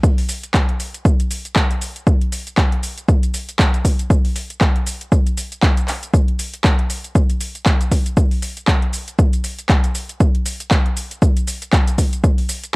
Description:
house; 118 BPM; 4/4; swing 57% on 16ths
deep house drum kit; drums; 0.0-12.7 s; handclaps, hi-hat, shaker; -23 LUFS; equal; overdrive
electronic kick drum; drums; 0.0-12.4 s; -15 LUFS; equal; overdrive
digital ambience; dry, gritty hardware recording; -15 LUFS; side -26 dB against mid
0.0-12.8 A section
0.04 0.54 | 1.05 1.56 2.07 2.58 | 3.09 3.59 4.10 4.61 | 5.12 5.63 6.14 6.64 | 7.15 7.66 8.17 8.68 | 9.19 9.70 10.20 10.71 | 11.22 11.73 12.24

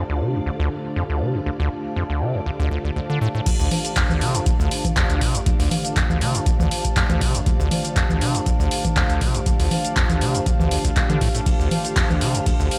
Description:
acid house; 120 BPM; 4/4; swing 54% on 16ths; D minor; A4 = 440 Hz
string machine, full ensemble; sustained chords; 0.0-12.8 s; D3 to F5; -34 LUFS; equal; ensemble chorus, sidechain pumping
acid bass, square; riff; 0.0-12.7 s; D2 to D3; -26 LUFS; equal; overdrive, digital delay
warbly tape-like pad; texture; 0.0-12.8 s; D4 to A5; -31 LUFS; equal; chorus, built-in reverb, sidechain pumping
booming analog drum machine; drums; 3.5-12.8 s; congas, crash cymbal, handclaps, hi-hat, ride cymbal, shaker; -26 LUFS; equal
electronic kick drum; drums; 3.5-12.6 s; -24 LUFS; equal
little or no reverb; -21 LUFS; mono
0.0-3.5 A section; 3.5-12.8 B section
drop 3.5-12.8
0.0 Dm
0.46 0.96 | 1.46 1.96 2.46 2.96 | 3.46 3.96 4.46 4.96 | 5.46 5.96 6.46 6.96 | 7.46 7.96 8.46 8.96 | 9.46 9.96 10.46 10.96 | 11.46 11.96 12.46

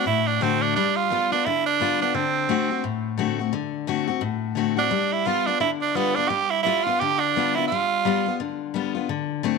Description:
rock; 173 BPM; 4/4; swing 60% on 8ths; A4 = 440 Hz
raspy tenor saxophone; melody; 0.0-8.3 s; B3 to G4; -22 LUFS; right 8 dB
picked steel-string acoustic guitar; accompaniment; 0.0-9.6 s; A2 to F#4; -24 LUFS; left 11 dB
moderate echo chamber reverb, RT60 1.6 s; 1960s-style stereo with parts hard left and right; -21 LUFS; side -4 dB against mid
0.0-9.6 A section
0.0 D7; 0.8 G7; 2.1 D7; 4.9 G7
0.06 0.41 | 0.76 1.10 1.45 1.80 | 2.15 2.49 2.84 3.19 | 3.53 3.88 4.23 4.58 | 4.92 5.27 5.62 5.97 | 6.31 6.66 7.01 7.36 | 7.71 8.05 8.40 8.75 | 9.10 9.45

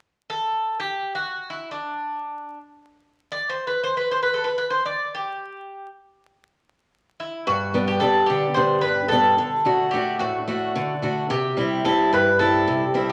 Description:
greek folk; free time; G major; A4 = 440 Hz
Greek bouzouki; melody; 0.3-13.1 s; D4 to D5; -25 LUFS; equal
picked old ladder-braced acoustic guitar; accompaniment; 7.5-13.1 s; G2 to F#4; -24 LUFS; equal
wet large studio reverb, RT60 1.0 s; vinyl crackle; -23 LUFS; mono
0.0-7.5 A section; 7.5-13.1 B section
0.0 N.C.; 7.5 G; 9.4 D; 11.3 C
free time

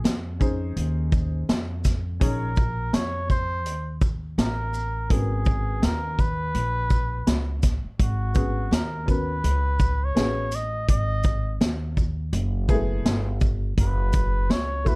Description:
hip hop, jazz-hop; 83 BPM; 4/4; swing 60% on 16ths; A4 = 440 Hz
trumpet with cup mute; melody; 0.0-15.0 s; Gb4 to Eb5; -29 LUFS; equal
upright bass; bass; 0.0-15.0 s; Gb1 to F2; -26 LUFS; equal
vintage drum kit; drums; 0.0-15.0 s; hi-hat, kick drum, shaker, snare drum; -23 LUFS; equal
warm upright piano; accompaniment; 0.4-15.0 s; Ab3 to Db5; -30 LUFS; left 2 dB
light reverb; dark, warm production; -22 LUFS; side -27 dB against mid
0.0-15.0 A section
0.0 Bbm11; 5.1 Abm11; 12.3 Gbm11
0.04 0.77 1.49 | 2.21 2.94 3.66 4.38 | 5.10 5.83 6.55 7.27 | 8.00 8.72 9.44 10.16 | 10.89 11.61 12.33 13.06 | 13.78 14.50

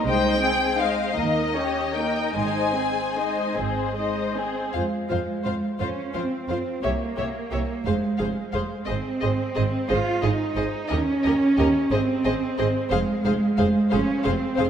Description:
classical, slow romantic movement for string orchestra; 49-62 BPM (dotted quarters); 6/8; rubato; Ab major, F minor from 4.7 s; A4 = 441 Hz
dark symphonic violin section; second line; 0.0-14.6 s; G4 to Eb5; -28 LUFS; left 3 dB
warm symphonic viola section; accompaniment; 0.0-14.7 s; Ab3 to Ab4; -30 LUFS; right 2 dB
warm symphonic violin section; melody; 0.1-14.7 s; Eb5 to Ab5; -30 LUFS; left 4 dB
rich symphonic double bass section; bass; 0.1-14.7 s; F1 to F2; -29 LUFS; right 3 dB
warm studio cello section; bass; 0.1-14.7 s; Ab2 to F4; -25 LUFS; right 2 dB
wet concert hall reverb, RT60 1.9 s; -21 LUFS; side -9 dB against mid
0.0-4.7 A section; 4.7-14.7 B section
0.1 Ab/C; 1.2 Eb7; 2.3 Ab; 4.7 Fm; 6.8 C7b9; 7.9 Fm; 8.9 Ab; 10.9 Eb7; 11.9 Ab; 12.9 Fm
| 0.07 1.17 | 2.35 3.56 | 4.73 5.79 | 6.83 7.85 | 8.88 9.89 | 10.90 11.91 | 12.91 13.91

